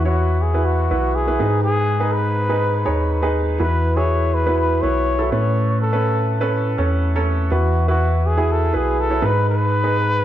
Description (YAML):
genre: piano-driven pop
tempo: 123 BPM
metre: 4/4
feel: straight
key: E major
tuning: A4 = 440 Hz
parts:
  - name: breathy trumpet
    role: melody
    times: 0.0-10.2 s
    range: F#4 to C#5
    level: -22 LUFS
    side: left 2 dB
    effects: ping-pong delay
  - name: clear upright piano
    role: accompaniment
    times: 0.0-10.2 s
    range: G#2 to C#5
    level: -22 LUFS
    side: right 2 dB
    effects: none
  - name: mellow tine electric piano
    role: bass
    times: 0.0-10.2 s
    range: B1 to A2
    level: -20 LUFS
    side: equal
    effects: wide subtle chorus
room: light reverb, studio ambience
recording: dark, warm production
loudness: -16 LUFS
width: side -12 dB against mid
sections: 0.0-10.2 A section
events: none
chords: 0.0 Esus2; 1.4 G#m; 3.6 Esus2; 5.3 Aadd9; 7.5 Esus2; 9.2 G#m